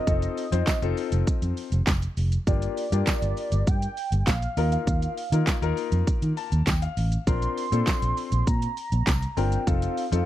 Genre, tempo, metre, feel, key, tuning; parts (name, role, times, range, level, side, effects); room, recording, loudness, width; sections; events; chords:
dance-pop; 100 BPM; 4/4; straight; Bb major; A4 = 442 Hz
warm velvety synth lead; melody; 0.0-10.3 s; D5 to C6; -32 LUFS; right 3 dB; chorus, tape echo
warm grand piano; accompaniment; 0.1-10.3 s; Bb3 to A5; -31 LUFS; left 12 dB; sidechain pumping
vintage muted fingered electric bass; bass; 0.1-10.2 s; F1 to Eb3; -24 LUFS; equal; sidechain pumping
pop drum kit; drums; 0.1-10.3 s; handclaps, hi-hat, kick drum, shaker, snare drum; -26 LUFS; equal
tambourine; percussion; 0.7-9.2 s; -41 LUFS; right 18 dB
digital ambience; dry, close 1970s-style studio recording; -22 LUFS; side -13 dB against mid
0.0-10.3 A section
grand piano fill 6.1-7.3
0.1 F7; 2.5 Gm7; 4.6 Ebsus2; 7.3 Bbadd9; 9.7 F7